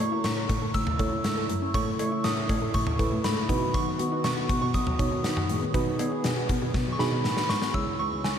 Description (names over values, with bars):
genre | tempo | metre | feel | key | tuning
synth-pop | 120 BPM | 4/4 | straight | unclear | A4 = 440 Hz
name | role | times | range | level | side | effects
soft synth bell | melody | 0.0-8.4 s | G#5 to E6 | -31 LUFS | right 1 dB | chorus, analog delay
mellow FM electric piano | accompaniment | 0.0-8.4 s | D#4 to C#5 | -33 LUFS | right 4 dB | chorus
chorused pulse-width pad | sustained chords | 0.0-7.7 s | C#3 to G#4 | -33 LUFS | left 1 dB | none
soft round pluck | arpeggios | 0.0-7.7 s | F#3 to A4 | -38 LUFS | left 6 dB | chorus, analog delay
dark cello | bass | 0.0-8.3 s | C#2 to B3 | -31 LUFS | equal | none
gated 80s drum kit | drums | 0.0-8.4 s | cowbell, hi-hat, kick drum, snare drum, toms | -29 LUFS | equal | none
room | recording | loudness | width
moderate huge ambient reverb, RT60 7.9 s | dreamy mix soaked in reverb | -24 LUFS | side -8 dB against mid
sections
0.0-7.7 A section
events
drum fill 6.7-7.7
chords
0.0 A; 3.5 B; 7.7 C#m